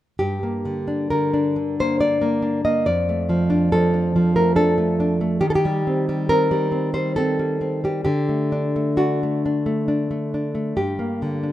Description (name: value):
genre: romantic piece for solo classical guitar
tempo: 65-71 BPM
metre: 3/4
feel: rubato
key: G minor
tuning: A4 = 440 Hz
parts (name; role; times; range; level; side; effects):
- nylon-string guitar; solo; 0.2-11.5 s; F2 to Eb5; -18 LUFS; equal; none
room: light reverb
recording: rough home demo mix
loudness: -18 LUFS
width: side -13 dB against mid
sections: 0.2-11.5 A section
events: none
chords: 0.2 Gm; 2.9 Dm/F; 5.4 Cm/Eb; 8.1 D; 10.8 Gm